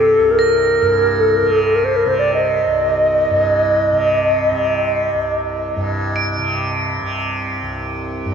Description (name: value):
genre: world meditative, free-time meditation music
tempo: free time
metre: none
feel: none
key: C minor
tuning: A4 = 440 Hz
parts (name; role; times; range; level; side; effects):
- bright reedy alto flute; melody; 0.0-5.4 s; A4 to Eb5; -15 LUFS; equal; diffuse ambient delay
- tanpura; drone; 0.0-8.3 s; C2 to C3; -22 LUFS; right 1 dB; none
- crotales; texture; 0.0-8.3 s; G6 to D7; -27 LUFS; right 5 dB; none
room: wet church reverb, RT60 3.5 s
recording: dark, warm production, nothing above 7.8 kHz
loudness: -14 LUFS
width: side -7 dB against mid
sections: 0.0-8.3 A section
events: none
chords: none